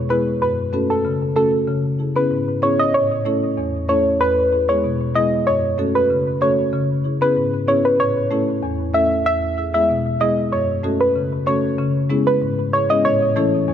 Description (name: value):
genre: dancehall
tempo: 95 BPM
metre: 4/4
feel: straight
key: C# minor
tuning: A4 = 440 Hz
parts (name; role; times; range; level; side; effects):
- marimba with medium mallets; accompaniment; 0.0-13.7 s; E2 to A4; -20 LUFS; left 2 dB; none
- soft round pluck; melody; 0.1-13.5 s; A4 to E5; -18 LUFS; equal; chorus, tape echo
room: light reverb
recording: none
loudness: -16 LUFS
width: side -9 dB against mid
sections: 0.0-11.8 A section; 11.8-13.7 B section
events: none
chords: 0.4 F#m; 1.7 C#m7; 2.9 A; 4.2 E; 5.5 F#m; 6.7 C#m7; 8.0 A; 9.3 E; 10.5 F#m; 11.8 C#m7; 13.0 A